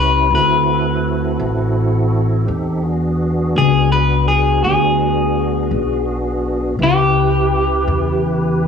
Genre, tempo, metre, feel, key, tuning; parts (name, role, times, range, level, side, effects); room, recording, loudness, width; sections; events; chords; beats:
slow blues; 56 BPM (dotted quarters); 12/8; straight; A4 = 438 Hz
electric guitar at the edge of break-up; melody; 0.0-8.7 s; G4 to B4; -17 LUFS; left 2 dB; cassette tape, tape echo
tonewheel organ; sustained chords; 0.0-8.7 s; C#3 to B4; -21 LUFS; right 1 dB; slow rotary speaker, chorus vibrato, cassette tape
upright bass; bass; 0.0-8.7 s; A1 to E2; -17 LUFS; left 1 dB
moderate booth ambience, RT60 0.2 s; home recording on cassette, small room reverb; -14 LUFS; side -6 dB against mid
0.0-6.8 A section; 6.8-8.7 B section
clean electric guitar solo 6.8-8.7
0.3 D7; 2.5 E7; 6.8 A7 (rootless)
0.32 1.40 | 2.48 3.56 4.64 5.72 | 6.80 7.88